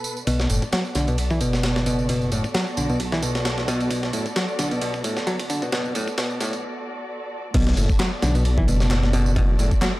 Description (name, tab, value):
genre	breakbeat, breaks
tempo	132 BPM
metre	4/4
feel	swing 55% on 16ths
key	B minor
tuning	A4 = 438 Hz
part	muted studio string section	sustained chords	0.0-10.0 s	B2 to D5	-30 LUFS	equal	sidechain pumping
part	electronic tambourine and handclaps	drums	0.0-9.9 s	none	-34 LUFS	right 3 dB	high-pass filter on perc, high-pass filter on snare, high-pass filter on room
part	picked electric bass	riff	0.3-9.9 s	A2 to F#3	-24 LUFS	equal	low-pass filter, tape echo
part	dark detuned saw bass	bass	0.3-9.7 s	F#1 to B1	-24 LUFS	equal	tube saturation
part	breakbeat sampler-style drum kit	drums	0.3-9.9 s	crash cymbal, kick drum, ride cymbal, snare drum	-26 LUFS	equal	high-pass filter on kick, high-pass filter on cymbals, high-pass filter on snare
room	light reverb, digital ambience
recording	dark, warm production, high-pass filter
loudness	-20 LUFS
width	side -18 dB against mid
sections	0.3-7.5 A section; 7.5-10.0 B section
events	build-up 0.3-7.5; filter sweep on picked electric bass 0.3-7.5; filter sweep 0.3-7.5; break 6.6-7.5; drop 7.5-10.0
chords	0.3 Bm7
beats	| 0.27 0.72 1.18 1.63 | 2.09 2.54 3.00 3.45 | 3.91 4.36 4.82 5.27 | 5.72 6.18 6.63 7.09 | 7.54 8.00 8.45 8.91 | 9.36 9.82